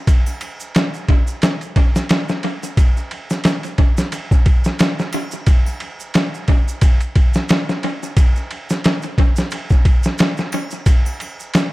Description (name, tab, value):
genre	trip hop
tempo	89 BPM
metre	4/4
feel	swing 56% on 16ths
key	none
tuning	none
part	boom bap sampler-style drum kit	drums	0.1-11.7 s	kick drum, ride cymbal, snare drum	-15 LUFS	equal	studio reverb, analog delay
part	maracas and triangle	percussion	0.1-11.7 s	none	-36 LUFS	right 4 dB	none
room	little or no reverb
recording	echo-heavy mix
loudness	-15 LUFS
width	side -19 dB against mid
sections	0.0-11.7 A section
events	none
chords	none